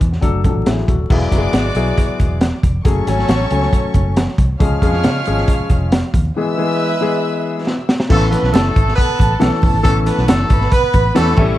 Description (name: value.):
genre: uptempo 1960s-style soul.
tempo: 137 BPM.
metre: 4/4.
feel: straight.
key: A major.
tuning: A4 = 440 Hz.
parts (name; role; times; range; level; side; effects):
dark upright piano; accompaniment; 0.0-11.6 s; E3 to G#5; -20 LUFS; left 4 dB; plate reverb.
vintage muted fingered electric bass; bass; 0.0-11.6 s; D#1 to C#3; -18 LUFS; equal; none.
crunchy breakbeat drum kit; drums; 0.0-11.5 s; crash cymbal, hi-hat, kick drum, snare drum; -16 LUFS; equal; none.
congas; percussion; 0.2-11.5 s; none; -28 LUFS; right 4 dB; none.
dark chamber string section; second line; 1.1-11.6 s; A4 to E#6; -24 LUFS; right 2 dB; plate reverb.
warm horn section; second line; 1.1-11.5 s; B2 to C#5; -23 LUFS; right 2 dB; plate reverb.
room: light reverb.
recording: dark, warm production, vinyl crackle.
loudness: -13 LUFS.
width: side -14 dB against mid.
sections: 0.0-1.1 A section; 1.1-8.1 B section; 8.1-11.6 C section.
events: break 6.4-8.1; drum fill 7.7-8.1.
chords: 0.2 D/F#; 1.1 Eadd9; 2.9 F#madd9; 4.6 C#; 6.4 E; 8.1 Aadd9.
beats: 0.23 0.66 | 1.10 1.54 1.98 2.41 | 2.85 3.29 3.73 4.17 | 4.60 5.04 5.48 5.92 | 6.35 6.79 7.23 7.67 | 8.10 8.54 8.97 9.41 | 9.85 10.28 10.72 11.16.